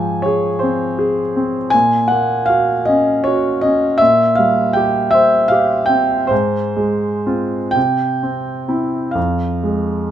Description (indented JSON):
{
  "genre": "classical, romantic nocturne for solo piano",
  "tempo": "39-56 BPM (dotted quarters)",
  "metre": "12/8",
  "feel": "rubato",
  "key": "F minor",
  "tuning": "A4 = 439 Hz",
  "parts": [
    { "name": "bright concert grand piano", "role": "solo", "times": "0.0-10.1 s", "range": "F2 to Ab5", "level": "-14 LUFS", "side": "equal", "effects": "none" }
  ],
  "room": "light reverb",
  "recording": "minimal, uncompressed stereo recording",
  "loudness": "-14 LUFS",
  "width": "side -10 dB against mid",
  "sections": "0.0-10.1 A section",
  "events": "none",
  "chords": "0.0 Fm/Ab; 1.7 Gb/Bb; 4.0 C5/Bb; 6.3 Fm/Ab; 7.8 C; 9.2 Fm",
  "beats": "0.64 | 1.73 2.86 4.00 5.13 | 6.31 7.75 9.16"
}